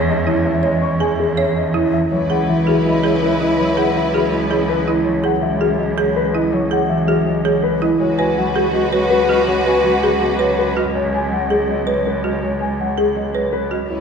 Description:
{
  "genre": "classical, minimalist pattern music",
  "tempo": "163 BPM",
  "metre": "4/4",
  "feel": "straight",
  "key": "C# minor",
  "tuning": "A4 = 440 Hz",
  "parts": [
    { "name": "dark grand piano", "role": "melody", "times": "0.0-14.0 s", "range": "G#4 to C#6", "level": "-21 LUFS", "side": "left 7 dB", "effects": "none" },
    { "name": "concert harp", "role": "accompaniment", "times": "0.0-14.0 s", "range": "E3 to C#4", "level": "-23 LUFS", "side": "left 1 dB", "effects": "none" },
    { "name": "folk marimba with medium hard mallets", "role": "arpeggios", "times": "0.0-13.9 s", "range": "E4 to C#5", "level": "-21 LUFS", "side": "right 5 dB", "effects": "none" },
    { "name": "rich cello", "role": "bass", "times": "0.0-14.0 s", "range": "C#2 to E2", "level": "-22 LUFS", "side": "right 1 dB", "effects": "none" },
    { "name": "alto flute", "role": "second line", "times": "2.1-4.8, 8.0-10.7, 13.9-14.0 s", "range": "E4 to F#4", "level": "-22 LUFS", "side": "equal", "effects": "none" },
    { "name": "clear studio string section", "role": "sustained chords", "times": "2.1-4.8, 8.0-10.7, 13.9-14.0 s", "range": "E4 to B4", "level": "-22 LUFS", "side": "left 1 dB", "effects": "none" }
  ],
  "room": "wet concert hall reverb, RT60 1.9 s",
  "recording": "recorded in a church or concert hall",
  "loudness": "-15 LUFS",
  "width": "side -6 dB against mid",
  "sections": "0.0-2.1 A section; 2.1-14.0 B section",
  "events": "none",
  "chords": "0.0 C#m/E; 2.1 C#m9; 8.0 G#m7/C#"
}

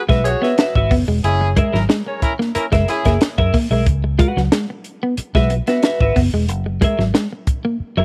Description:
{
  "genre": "funk",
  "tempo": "91 BPM",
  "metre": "4/4",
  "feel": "straight",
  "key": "C# dorian",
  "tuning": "A4 = 440 Hz",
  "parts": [
    { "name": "warm horn section", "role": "second line", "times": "0.0-3.2 s", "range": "C#4 to C#5", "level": "-25 LUFS", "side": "equal", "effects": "none" },
    { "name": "clean electric guitar", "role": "accompaniment", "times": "0.1-8.0 s", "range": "F#4 to F#5", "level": "-22 LUFS", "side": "equal", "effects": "analog chorus" },
    { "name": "electric guitar at the edge of break-up", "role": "riff", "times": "0.1-8.0 s", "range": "F#3 to B3", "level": "-24 LUFS", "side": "equal", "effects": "none" },
    { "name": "vintage muted fingered electric bass", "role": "bass", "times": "0.1-8.0 s", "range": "E1 to F#2", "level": "-21 LUFS", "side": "equal", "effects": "none" },
    { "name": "compact cocktail drum kit", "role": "drums", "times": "0.1-7.6 s", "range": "hi-hat, kick drum, snare drum", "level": "-20 LUFS", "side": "equal", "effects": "none" }
  ],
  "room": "little or no reverb",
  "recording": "none",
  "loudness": "-17 LUFS",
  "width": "mono",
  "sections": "0.0-8.0 A section",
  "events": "none",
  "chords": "0.0 C#m7; 1.2 F#9; 3.9 C#m7; 6.5 F#9"
}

